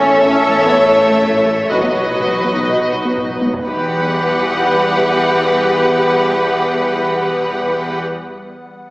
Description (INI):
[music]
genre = cinematic, hybrid orchestral and electronic film score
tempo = 123 BPM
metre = 4/4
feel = straight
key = E dorian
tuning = A4 = 441 Hz
[part]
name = warm symphonic violin section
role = melody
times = 0.0-8.0 s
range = D#5 to F#5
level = -22 LUFS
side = left 1 dB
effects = none
[part]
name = warm symphonic violin section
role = second line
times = 0.0-8.0 s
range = B4 to C#5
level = -18 LUFS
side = equal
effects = none
[part]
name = rich symphonic viola section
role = accompaniment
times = 0.0-8.0 s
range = F#4 to A4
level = -19 LUFS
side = equal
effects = none
[part]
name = glassy FM pad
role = sustained chords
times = 0.0-8.0 s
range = E3 to F#5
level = -22 LUFS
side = equal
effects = ensemble chorus, built-in reverb
[part]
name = rubbery square bass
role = riff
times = 0.0-3.6 s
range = A2 to B3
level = -26 LUFS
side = equal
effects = none
[part]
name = rich symphonic cello section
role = bass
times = 0.0-8.0 s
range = E3 to C#4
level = -21 LUFS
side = equal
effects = none
[part]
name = rich symphonic double bass section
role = bass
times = 0.0-8.0 s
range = A1 to E2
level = -26 LUFS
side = equal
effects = none
[part]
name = warm sub bass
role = bass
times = 0.0-8.0 s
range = E1 to B1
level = -39 LUFS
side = equal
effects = none
[part]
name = taiko ensemble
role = drums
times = 0.2-4.6 s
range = none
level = -29 LUFS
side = equal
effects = none
[part]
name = warm French horn section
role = sustained chords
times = 0.7-8.0 s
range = E4 to D#5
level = -21 LUFS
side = left 1 dB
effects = none
[sound]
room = wet recital hall reverb, RT60 1.6 s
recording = heard from further back in the room, small speaker sound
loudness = -12 LUFS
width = side -21 dB against mid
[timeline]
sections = 0.0-3.7 A section; 3.7-7.6 B section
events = drum fill 3.2-3.7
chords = 0.0 A; 1.7 B; 3.7 Emadd9